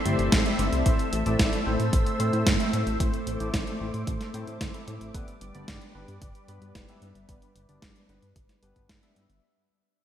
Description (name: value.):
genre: italo disco.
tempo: 112 BPM.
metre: 4/4.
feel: straight.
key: unclear.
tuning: A4 = 440 Hz.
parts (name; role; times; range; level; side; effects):
string machine, full ensemble; sustained chords; 0.0-9.4 s; G3 to E6; -31 LUFS; equal; ensemble chorus.
chorused polysynth; stabs; 0.1-9.4 s; G3 to E5; -33 LUFS; left 2 dB; none.
chorused synth bass; bass; 0.1-9.4 s; F1 to A2; -31 LUFS; equal; tube saturation.
clean 12-bit digital drum machine; drums; 0.1-9.4 s; hi-hat, snare drum; -29 LUFS; right 1 dB; gated reverb.
electronic kick drum; drums; 0.3-9.0 s; none; -28 LUFS; equal; none.
room: moderate lush hall reverb, RT60 2.5 s.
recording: bright 1980s-style digital production.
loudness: -23 LUFS.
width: side -10 dB against mid.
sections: 0.0-9.4 A section.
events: fade-out 0.0-9.4; filter sweep on analog polysynth 0.0-9.4; filter sweep on string machine 0.0-9.4.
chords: 0.0 C6; 5.1 G.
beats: 0.32 | 0.86 1.39 1.93 2.46 | 3.00 3.54 4.07 4.61 | 5.14 5.68 6.21 6.75 | 7.29 7.82 8.36 8.89.